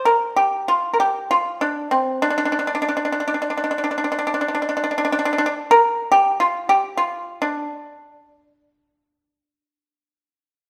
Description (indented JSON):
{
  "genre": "chinese traditional, Chinese solo plucked strings",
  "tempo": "64-73 BPM",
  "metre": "4/4",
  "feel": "rubato",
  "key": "D jue mode",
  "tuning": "A4 = 440 Hz",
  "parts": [
    { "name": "pipa", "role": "solo", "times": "0.0-10.7 s", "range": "C4 to Bb4", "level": "-20 LUFS", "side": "equal", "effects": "none" }
  ],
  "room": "wet stone room reverb, RT60 1.2 s",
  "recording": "band playing live in one room",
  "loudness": "-20 LUFS",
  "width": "mono",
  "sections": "0.0-10.7 A section",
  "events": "none",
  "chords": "none"
}